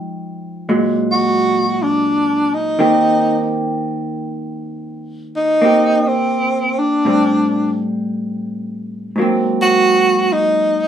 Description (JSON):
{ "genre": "jazz ballad", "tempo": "56 BPM", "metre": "4/4", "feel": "swing 66% on 8ths", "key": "unclear", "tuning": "A4 = 440 Hz", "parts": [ { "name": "vintage hollow-body jazz guitar", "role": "accompaniment", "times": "0.0-10.9 s", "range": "Ab2 to G4", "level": "-18 LUFS", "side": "right 1 dB", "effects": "none" }, { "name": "breathy tenor saxophone", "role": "melody", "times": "1.1-10.9 s", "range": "C4 to F#4", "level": "-15 LUFS", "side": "equal", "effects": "none" } ], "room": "wet small room ambience, RT60 0.5 s", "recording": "band playing live in one room", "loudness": "-14 LUFS", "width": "side -9 dB against mid", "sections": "0.0-10.9 A section", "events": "tenor saxophone solo 0.0-10.9", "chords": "0.0 Fm9; 0.7 Bbaug7; 2.8 Eb6; 7.0 Am7; 9.2 Ab9" }